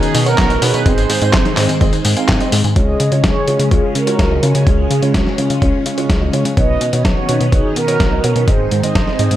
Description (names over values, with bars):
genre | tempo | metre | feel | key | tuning
italo disco | 126 BPM | 4/4 | straight | Db major | A4 = 440 Hz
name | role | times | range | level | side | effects
mellow synth brass | melody | 0.0-9.4 s | Db4 to Eb5 | -19 LUFS | right 2 dB | chorus, vintage 12-bit sampler grit, digital delay
phased string machine | sustained chords | 0.0-9.4 s | Db3 to Db4 | -22 LUFS | equal | ensemble chorus, phaser
wide unison pluck | arpeggios | 0.0-2.7 s | Cb4 to Ab5 | -26 LUFS | left 1 dB | none
dark baby grand piano | stabs | 0.0-9.3 s | Ab3 to F5 | -23 LUFS | right 2 dB | none
dusty soul sampler-style drum kit | drums | 0.0-9.4 s | handclaps, hi-hat, snare drum, tambourine | -20 LUFS | equal | overdrive, gated reverb
chorused synth bass | bass | 0.1-9.4 s | Ab1 to Db3 | -18 LUFS | equal | none
electronic kick drum | drums | 0.4-9.0 s | none | -16 LUFS | equal | overdrive
room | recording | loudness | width
light reverb, digital ambience | none | -12 LUFS | side -13 dB against mid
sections
0.0-2.8 A section; 2.8-9.4 B section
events
none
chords
0.0 Cbadd9; 0.9 Ab; 2.8 Db; 6.6 Cbadd9; 8.5 Ab